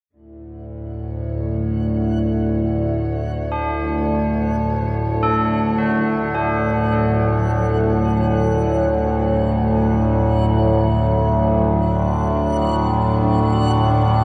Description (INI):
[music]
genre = dark ambient drone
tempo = free time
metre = none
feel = none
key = D major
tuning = A4 = 441 Hz
[part]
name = warm studio cello section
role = sustained chords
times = 0.1-14.2 s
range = D3 to C#5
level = -32 LUFS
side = equal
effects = none
[part]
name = overtone-sweeping drone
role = drone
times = 0.4-14.2 s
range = D2 to A2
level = -20 LUFS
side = equal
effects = chorus, built-in reverb
[part]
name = backwards swelling texture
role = texture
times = 0.9-14.2 s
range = F#5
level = -39 LUFS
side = equal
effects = built-in reverb
[part]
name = tubular bells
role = arpeggios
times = 3.5-14.2 s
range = D4 to A4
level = -28 LUFS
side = equal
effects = diffuse ambient delay
[sound]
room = wet cathedral reverb, RT60 7.3 s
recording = in a vast, echoing space, lossy compression artefacts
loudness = -19 LUFS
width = mono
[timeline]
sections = 0.1-14.2 A section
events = fade-in on cello section 0.1-14.2; fade-in on synth texture 0.1-14.2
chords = 0.1 D